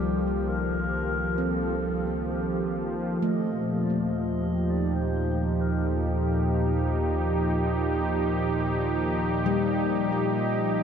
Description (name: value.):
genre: ambient.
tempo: 67 BPM.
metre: 4/4.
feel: straight.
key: Eb lydian.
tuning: A4 = 442 Hz.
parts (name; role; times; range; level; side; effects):
dark clarinet; melody; 0.0-10.8 s; F4 to Eb5; -35 LUFS; left 1 dB; ping-pong delay.
warm analog pad; sustained chords; 0.0-10.8 s; Bb2 to G4; -26 LUFS; right 1 dB; chorus.
handpan; arpeggios; 0.0-10.7 s; G3 to C4; -31 LUFS; left 3 dB; ping-pong delay.
warm sub bass; bass; 0.0-10.8 s; C2 to Eb2; -32 LUFS; equal; none.
bowed-like drone; drone; 6.3-10.8 s; Bb2 to Eb3; -41 LUFS; left 1 dB; none.
room: wet huge ambient reverb, RT60 9.2 s.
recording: in a vast, echoing space.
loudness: -24 LUFS.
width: side -7 dB against mid.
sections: 0.0-3.2 A section; 3.2-10.8 B section.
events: fade-in on clarinet 3.2-10.8.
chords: 0.0 Cm; 3.2 Ebadd9; 10.3 Cm.